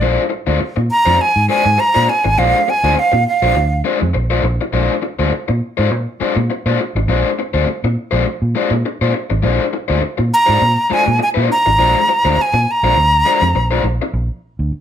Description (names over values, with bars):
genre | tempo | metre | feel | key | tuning
funk | 102 BPM | 4/4 | swing 56% on 16ths | Bb mixolydian | A4 = 444 Hz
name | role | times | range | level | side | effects
breathy bright jazz flute | melody | 0.0-3.8, 10.3-13.9 s | F5 to Bb5 | -13 LUFS | right 1 dB | none
raw garage guitar | accompaniment | 0.0-14.1 s | Ab3 to C5 | -18 LUFS | left 5 dB | overdrive
vintage muted fingered electric bass | bass | 0.0-14.8 s | Ab1 to Bb2 | -17 LUFS | right 1 dB | none
room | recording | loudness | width
moderate club reverb, RT60 0.8 s | none | -13 LUFS | side -9 dB against mid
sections
0.0-14.8 A section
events
break 14.1-14.8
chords
0.0 Bb9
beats
| 0.02 0.61 1.20 1.79 | 2.38 2.97 3.56 4.14 | 4.73 5.32 5.91 6.50 | 7.09 7.67 8.26 8.85 | 9.44 10.03 10.62 11.20 | 11.79 12.38 12.97 13.55 | 14.14 14.73